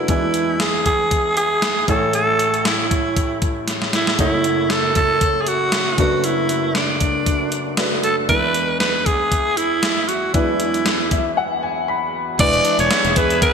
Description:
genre	1980s-style pop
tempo	117 BPM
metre	4/4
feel	swing 55% on 16ths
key	unclear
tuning	A4 = 442 Hz
part	breathy alto saxophone	melody	0.0-13.5 s	D4 to D5	-18 LUFS	right 2 dB	none
part	clear baby grand piano	accompaniment	0.0-13.5 s	F#1 to B5	-23 LUFS	left 1 dB	wide subtle chorus
part	gated 80s digital drum machine	drums	0.1-13.5 s	crash cymbal, hi-hat, kick drum, snare drum	-21 LUFS	left 1 dB	gated reverb, gated reverb snare
part	chorused pulse-width pad	sustained chords	12.4-13.5 s	G#4 to E5	-25 LUFS	left 4 dB	none
part	direct-recorded clean electric guitar	riff	12.4-13.5 s	E3 to G#4	-27 LUFS	right 3 dB	wide subtle chorus
part	sustaining fretless electric bass	bass	12.4-13.5 s	E1 to E2	-25 LUFS	left 1 dB	lush chorus
room	wet lush hall reverb, RT60 2.3 s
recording	bright 1980s-style digital production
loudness	-16 LUFS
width	side -6 dB against mid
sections	0.0-12.4 A section; 12.4-13.5 B section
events	drum fill 3.7-4.2; grand piano fill 10.9-12.4; break 11.4-12.4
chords	0.1 E7; 1.9 Amaj7; 4.2 F#m7; 6.0 Bm7/F#; 8.3 E7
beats	| 0.09 0.60 1.11 1.63 | 2.14 2.65 3.16 3.68 | 4.19 4.70 5.22 5.73 | 6.24 6.75 7.27 7.78 | 8.29 8.80 9.32 9.83 | 10.34 10.86 11.37 11.88 | 12.39 12.91 13.42

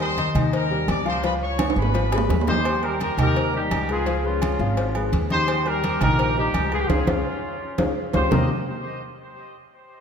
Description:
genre	latin, salsa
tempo	170 BPM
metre	4/4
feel	straight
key	Eb major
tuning	A4 = 440 Hz
part	bright trumpet section	melody	0.0-2.5 s	Bb4 to D6	-28 LUFS	left 3 dB	none
part	warm upright piano	accompaniment	0.0-8.5 s	Eb3 to F5	-27 LUFS	left 5 dB	none
part	upright bass	bass	0.0-8.5 s	Ab1 to Eb2	-26 LUFS	right 1 dB	none
part	agogo bells and timbales	percussion	0.0-8.4 s	none	-29 LUFS	right 6 dB	none
part	congas	percussion	0.0-8.4 s	none	-28 LUFS	right 1 dB	none
part	cowbell and bongos	percussion	0.2-8.4 s	none	-31 LUFS	left 4 dB	none
part	clear horn section	melody	2.5-8.5 s	Db4 to Eb5	-25 LUFS	right 1 dB	tape echo
room	wet scoring stage reverb, RT60 1.7 s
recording	none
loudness	-20 LUFS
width	side -7 dB against mid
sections	0.0-2.7 A section; 2.7-8.3 B section; 8.3-9.7 C section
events	drum fill 1.6-2.7, 7.3-8.3; band accent 6.9-8.3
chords	0.0 Eb6; 1.2 Db7; 2.7 Eb; 4.1 Db7; 5.5 Eb; 6.9 Db; 8.3 Eb6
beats	0.18 0.53 0.88 | 1.24 1.59 1.94 2.30 | 2.65 3.00 3.36 3.71 | 4.07 4.42 4.77 5.13 | 5.48 5.84 6.19 6.54 | 6.90 7.25 7.61 7.96 | 8.32

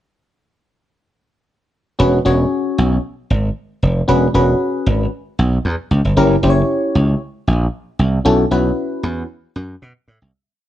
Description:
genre	early-eighties boogie funk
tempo	115 BPM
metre	4/4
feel	straight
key	E major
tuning	A4 = 441 Hz
part	FM electric piano	accompaniment	2.0-9.3 s	C#4 to C#5	-16 LUFS	left 1 dB	chorus
part	slap bass	bass	2.0-10.3 s	E1 to B2	-15 LUFS	equal	none
room	light reverb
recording	band playing live in one room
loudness	-14 LUFS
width	side -12 dB against mid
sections	2.0-10.3 verse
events	fade-out 8.3-10.3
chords	2.0 E69; 6.2 F#7b9; 8.3 B9sus4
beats	| 2.00 2.52 3.04 3.56 | 4.08 4.60 5.12 5.65 | 6.17 6.69 7.21 7.73 | 8.26 8.78 9.30 9.82

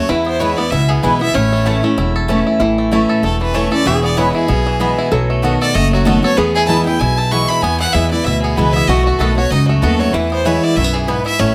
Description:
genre	bluegrass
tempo	191 BPM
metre	4/4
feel	swing 56% on 8ths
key	unclear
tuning	A4 = 440 Hz
part	clear fiddle	melody	0.0-11.5 s	F#4 to C#6	-22 LUFS	equal	none
part	lap resonator guitar	second line	0.0-11.5 s	C#4 to A4	-25 LUFS	equal	none
part	picked steel-string acoustic guitar	accompaniment	0.0-11.5 s	E2 to F#4	-20 LUFS	equal	none
part	bluegrass banjo	arpeggios	0.0-11.5 s	E3 to A4	-24 LUFS	equal	none
part	upright bass	bass	0.0-11.5 s	E1 to E2	-20 LUFS	equal	none
part	mandolin	stabs	0.4-11.2 s	A3 to A5	-24 LUFS	equal	none
room	moderate studio reverb, RT60 0.7 s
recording	none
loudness	-15 LUFS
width	mono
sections	0.0-2.6 A section; 2.6-11.5 A section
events	none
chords	0.1 E; 1.3 A; 3.9 E; 5.1 B7; 6.4 E; 8.9 B7; 10.1 E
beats	| 0.09 0.41 0.72 1.03 | 1.35 1.66 1.98 2.29 | 2.60 2.92 3.23 3.55 | 3.86 4.17 4.49 4.80 | 5.12 5.43 5.75 6.06 | 6.37 6.69 7.00 7.32 | 7.63 7.94 8.26 8.57 | 8.88 9.20 9.51 9.83 | 10.14 10.45 10.77 11.08 | 11.39

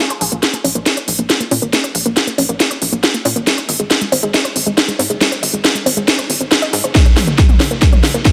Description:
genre	uplifting trance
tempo	138 BPM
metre	4/4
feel	straight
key	Bb minor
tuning	A4 = 440 Hz
part	analog pluck	arpeggios	0.0-8.3 s	Ab3 to F5	-22 LUFS	equal	chorus, sidechain pumping, delay
part	techno drum kit	drums	0.1-8.3 s	hi-hat, snare drum, toms	-17 LUFS	equal	overdrive, sidechain pumping on hats, sidechain pumping on toms
part	tight sequencer bass	bass	0.2-8.2 s	Gb1 to Bb2	-26 LUFS	equal	sidechain pumping, high-pass filter
part	electronic kick drum	drums	6.9-8.3 s	none	-13 LUFS	equal	overdrive
room	moderate lush hall reverb, RT60 2.2 s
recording	none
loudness	-14 LUFS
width	mono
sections	0.0-8.3 A section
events	build-up 0.0-8.3; drum fill 0.0-8.3; filter sweep on synth arpeggio sound 0.0-8.3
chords	0.0 Bbm; 3.5 Ab; 7.0 Bbm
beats	0.43 0.86 1.30 | 1.73 2.17 2.60 3.04 | 3.47 3.91 4.34 4.78 | 5.21 5.64 6.08 6.51 | 6.95 7.38 7.82 8.25

